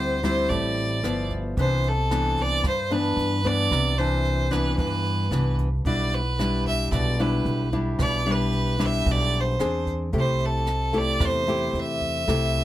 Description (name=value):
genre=bossa nova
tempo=112 BPM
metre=4/4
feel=straight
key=E minor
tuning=A4 = 439 Hz
part: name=bright fiddle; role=melody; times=0.0-12.6 s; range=A4 to E5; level=-26 LUFS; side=right 1 dB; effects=none
part: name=nylon-string guitar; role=accompaniment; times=0.0-12.6 s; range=G2 to G#4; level=-27 LUFS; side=left 2 dB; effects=none
part: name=upright bass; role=bass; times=0.0-12.6 s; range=G1 to G2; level=-26 LUFS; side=right 1 dB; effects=none
part: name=jazz brush drum kit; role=drums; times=0.2-12.6 s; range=hi-hat, kick drum, rim click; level=-31 LUFS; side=right 1 dB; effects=none
room=little or no reverb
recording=close, detailed microphones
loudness=-21 LUFS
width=side -14 dB against mid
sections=0.0-12.6 A section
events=none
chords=0.0 D9sus4; 1.0 G6; 1.6 Cmaj9; 5.9 Em7/B; 9.6 Eaug7; 10.1 Am7/C